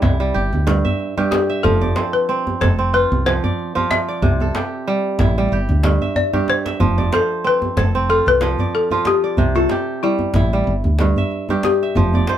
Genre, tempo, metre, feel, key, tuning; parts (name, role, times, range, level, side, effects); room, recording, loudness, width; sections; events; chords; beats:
west african traditional, West African string and xylophone music; 93 BPM; 4/4; swing 55% on 16ths; F lydian; A4 = 440 Hz
balafon; melody; 0.0-12.4 s; E4 to E5; -19 LUFS; left 4 dB
kora; arpeggios; 0.0-12.4 s; G2 to E5; -20 LUFS; right 3 dB
woody fretless electric bass; bass; 0.0-12.2 s; F1 to D2; -18 LUFS; equal
djembe; percussion; 0.0-12.4 s; -21 LUFS; equal
light reverb; band playing live in one room; -15 LUFS; side -10 dB against mid
0.0-12.4 A section
drum fill 6.0-6.8
0.4 G5; 1.6 F; 4.2 C; 5.5 G5; 6.8 F; 9.4 C; 10.7 G5
0.35 1.00 | 1.64 2.29 2.93 3.58 | 4.22 4.87 5.51 6.16 | 6.80 7.45 8.09 8.74 | 9.38 10.03 10.67 11.31 | 11.96